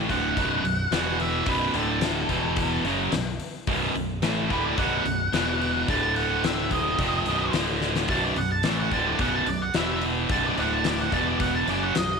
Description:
blues rock power trio and southern rock; 109 BPM; 4/4; straight; A4 = 440 Hz
distorted electric guitar; riff; 0.0-12.2 s; B1 to A3; -25 LUFS; right 1 dB; overdrive
growling fingered electric bass; bass; 0.0-12.2 s; B0 to A1; -32 LUFS; right 1 dB; overdrive
octave-fuzz lead guitar; melody; 0.1-12.2 s; A4 to A5; -28 LUFS; right 2 dB; distortion, slapback echo
huge arena drum kit; drums; 0.1-12.1 s; hi-hat, kick drum, snare drum; -30 LUFS; left 4 dB
light reverb, studio reverb; 1960s-style stereo; -22 LUFS; side -5 dB against mid
0.0-12.2 A section
lead electric guitar solo 0.0-12.2; drum fill 7.8
0.0 B5; 0.9 E5; 1.5 B5; 1.7 D5; 2.3 E5; 2.8 B5; 5.3 E5; 5.9 D5; 7.0 B; 7.5 D5; 8.1 B5; 9.7 E5; 10.3 B5; 10.6 D5; 11.1 E5; 11.7 B5
0.37 0.92 | 1.47 2.02 2.57 3.12 | 3.68 4.23 4.78 5.33 | 5.88 6.44 6.99 7.54 | 8.09 8.64 9.20 9.75 | 10.30 10.85 11.40 11.95

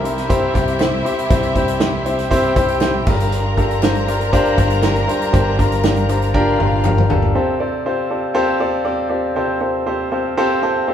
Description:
piano-driven pop; 119 BPM; 4/4; straight; F major; A4 = 440 Hz
warm symphonic violin section; second line; 0.0-7.1 s; E4 to Bb5; -25 LUFS; left 1 dB
warm grand piano; accompaniment; 0.0-10.9 s; G2 to A5; -18 LUFS; left 1 dB
warm studio string section; sustained chords; 0.0-7.3 s; C3 to Bb4; -28 LUFS; left 1 dB
picked electric bass; bass; 0.0-7.3 s; G1 to C2; -21 LUFS; equal
natural country drum kit; drums; 0.1-7.3 s; crash cymbal, hi-hat, kick drum, snare drum, toms; -20 LUFS; equal
group handclap; percussion; 0.8-7.0 s; -39 LUFS; left 4 dB
moderate large studio reverb, RT60 1.4 s; band playing live in one room; -15 LUFS; side -9 dB against mid
0.0-7.4 A section; 7.4-10.9 B section
drum fill 6.3-7.4; grand piano fill 9.9-10.9
0.0 C; 3.1 Gm7; 7.4 Fadd9
0.30 0.81 | 1.31 1.81 2.32 2.82 | 3.32 3.83 4.33 4.83 | 5.34 5.84 6.34 6.85 | 7.35 7.86 8.36 8.86 | 9.37 9.87 10.37 10.88

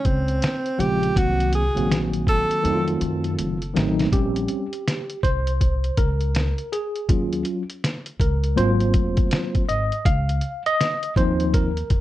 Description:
hip hop, jazz-hop; 81 BPM; 4/4; swing 63% on 16ths; A4 = 440 Hz
breathy tenor saxophone; melody; 0.0-3.0 s; C4 to A4; -24 LUFS; right 1 dB; analog delay, plate reverb
trip hop sampler-style drum kit; drums; 0.0-12.0 s; hi-hat, kick drum, snare drum; -23 LUFS; equal; vintage 12-bit sampler grit
upright bass; bass; 0.1-12.0 s; F1 to Gb2; -24 LUFS; equal
tine electric piano; accompaniment; 0.8-12.0 s; Db3 to F5; -24 LUFS; equal; overdrive, medium stereo tremolo
light reverb; -20 LUFS; side -14 dB against mid
0.0-4.1 A section; 4.1-12.0 B section
drum fill 2.6-4.1; tine electric piano solo 4.1-12.0
0.0 Dbmaj7; 1.2 Cm7b5; 2.6 F7b9; 4.1 Bbm69; 7.1 Ebm7; 8.6 Ab13; 10.1 Dbmaj9
0.42 | 1.16 1.91 2.65 3.39 | 4.13 4.87 5.61 6.35 | 7.09 7.83 8.57 9.31 | 10.05 10.79 11.53

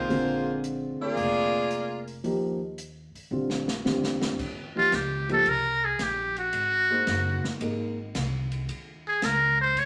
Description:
jazz, big band swing; 112 BPM; 4/4; swing 69% on 8ths; A4 = 440 Hz
warm saxophone section; melody; 0.0-2.0 s; Bb3 to D5; -29 LUFS; equal
dark concert grand piano; accompaniment; 0.0-8.0 s; D3 to C5; -32 LUFS; equal
upright bass; bass; 0.0-9.9 s; F1 to Fb2; -37 LUFS; equal
swinging big-band drum kit; drums; 0.1-9.9 s; crash cymbal, hi-hat, kick drum, ride cymbal, snare drum; -38 LUFS; equal
trumpet with metal mute; melody; 4.8-9.9 s; F4 to Db5; -26 LUFS; equal
wet studio reverb, RT60 0.7 s; -27 LUFS; mono
0.0-4.4 A section; 4.4-9.9 B section
drum fill 3.3-4.4; muted trumpet solo 4.4-9.9
0.1 Bb7; 2.2 Eb; 3.3 Bb; 4.4 Eb7; 6.5 Ab7; 8.7 Eb7(no3)
| 0.10 0.64 1.17 1.71 | 2.25 2.78 3.32 3.85 | 4.39 4.93 5.46 6.00 | 6.54 7.08 7.61 8.15 | 8.69 9.22 9.76

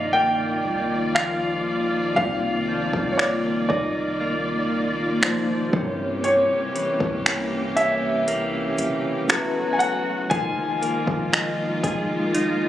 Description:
contemporary R&B; 59 BPM; 4/4; straight; C minor; A4 = 437 Hz
clear concert grand piano; melody; 0.0-12.3 s; Db5 to G#5; -24 LUFS; equal; ping-pong delay
tine electric piano; accompaniment; 0.0-12.7 s; C3 to D5; -31 LUFS; left 2 dB; fast stereo tremolo
warm studio string section; sustained chords; 0.0-12.7 s; Bb2 to D5; -27 LUFS; left 2 dB; sidechain pumping
direct-recorded clean electric guitar; arpeggios; 0.0-12.7 s; C3 to Ab4; -28 LUFS; right 2 dB; ping-pong delay
warm 808-style bass; bass; 0.0-12.7 s; Eb1 to G2; -37 LUFS; left 1 dB
smooth R&B drum kit; drums; 1.2-12.6 s; finger snaps, hi-hat, kick drum; -23 LUFS; equal; overdrive
light reverb; recorded on a phone in the room, club reverb; -20 LUFS; side -12 dB against mid
0.0-12.7 A section
0.0 Cm11; 5.7 C7b9; 9.3 F#m11; 10.3 Fm11
0.14 1.16 | 2.17 3.19 4.21 5.22 | 6.24 7.26 8.28 9.29 | 10.31 11.33 12.34

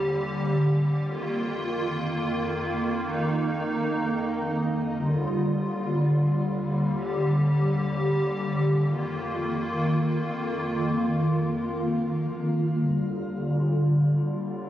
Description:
hip hop; free time; Eb major; A4 = 440 Hz
hollow soft pad; solo; 0.0-14.7 s; Eb2 to G4; -23 LUFS; equal; ensemble chorus, low-pass filter
moderate shimmer reverb, RT60 4.2 s; recorded on a phone in the room, club reverb; -23 LUFS; side -12 dB against mid
0.0-12.8 A section; 12.8-14.7 B section
0.0 Ebmaj7; 1.1 F7sus4; 5.0 Ebmaj9; 8.9 F7sus4; 12.8 Ebmaj9
free time

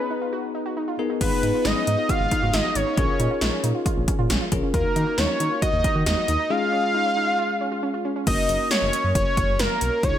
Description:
synth-pop; 136 BPM; 4/4; straight; F# major; A4 = 442 Hz
fat analog lead; melody; 0.0-10.2 s; A#4 to E#5; -24 LUFS; equal; tape echo
bell-like tine electric piano; accompaniment; 0.0-10.2 s; G#3 to A#5; -28 LUFS; left 6 dB
warbly dusty pluck; arpeggios; 0.0-8.2 s; C#4 to F#4; -31 LUFS; right 4 dB; chorus, tape echo
smooth synth bass; bass; 1.2-10.1 s; F#1 to D#3; -26 LUFS; equal
80s electronic pad drums; drums; 1.2-10.1 s; crash cymbal, hi-hat, kick drum, snare drum; -25 LUFS; equal; gated reverb
light reverb, digital ambience; -20 LUFS; side -10 dB against mid
0.0-1.2 A section; 1.2-8.3 B section; 8.3-10.2 C section
break 0.0-1.2
0.0 G#madd9; 1.2 G#m; 3.0 A#m7; 4.7 D#m; 6.5 C#; 8.3 F#
0.33 0.77 | 1.21 1.65 2.09 2.53 | 2.98 3.42 3.86 4.30 | 4.74 5.18 5.62 6.06 | 6.50 6.95 7.39 7.83 | 8.27 8.71 9.15 9.59 | 10.03

